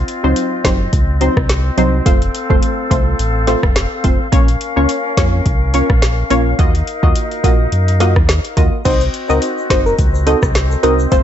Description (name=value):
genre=dancehall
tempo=106 BPM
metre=4/4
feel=swing 56% on 16ths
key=unclear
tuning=A4 = 440 Hz
part: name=small flute group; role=sustained chords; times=0.0-11.2 s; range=C4 to F5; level=-22 LUFS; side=left 3 dB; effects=sidechain pumping
part: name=sub bass with octave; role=bass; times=0.0-11.2 s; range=F1 to Gb2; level=-16 LUFS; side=equal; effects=none
part: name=afro-pop drum kit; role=drums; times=0.1-11.2 s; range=crash cymbal, hi-hat, kick drum, rim click, snare drum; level=-15 LUFS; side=equal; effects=none
part: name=punchy chord stab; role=accompaniment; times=0.2-11.2 s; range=Gb3 to Eb5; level=-17 LUFS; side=right 1 dB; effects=chorus
part: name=soft struck synth lead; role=melody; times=8.9-11.2 s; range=A4 to C5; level=-18 LUFS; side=left 1 dB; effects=chorus, ping-pong delay
part: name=egg shaker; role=percussion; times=8.9-11.2 s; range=none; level=-38 LUFS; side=left 4 dB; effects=none
room=digital ambience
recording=nothing above 7.9 kHz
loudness=-12 LUFS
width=side -10 dB against mid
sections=0.0-8.9 A section; 8.9-11.2 B section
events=none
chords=0.0 Cdim; 2.1 F; 4.3 Bbm; 6.6 Ebmadd9; 8.9 Cdim